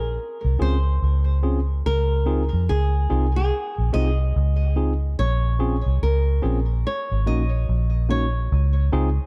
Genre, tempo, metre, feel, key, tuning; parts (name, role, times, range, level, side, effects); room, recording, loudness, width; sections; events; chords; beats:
lovers rock reggae; 72 BPM; 4/4; swing 61% on 16ths; Db major; A4 = 440 Hz
flamenco guitar; melody; 0.0-9.3 s; Ab4 to Eb5; -31 LUFS; equal; tape echo
vintage muted fingered electric bass; bass; 0.0-9.2 s; Ab1 to F2; -22 LUFS; equal
tine electric piano; accompaniment; 0.6-9.1 s; Bb3 to Ab4; -31 LUFS; equal
light reverb; dark, warm production; -22 LUFS; mono
0.0-8.5 A section
0.0 Bbm7; 1.8 Dbmaj7; 5.2 Bbm7; 6.8 Ab7sus4 (rootless); 8.5 Dbmaj7
0.18 1.01 | 1.85 2.68 3.51 4.35 | 5.18 6.01 6.84 7.67 | 8.51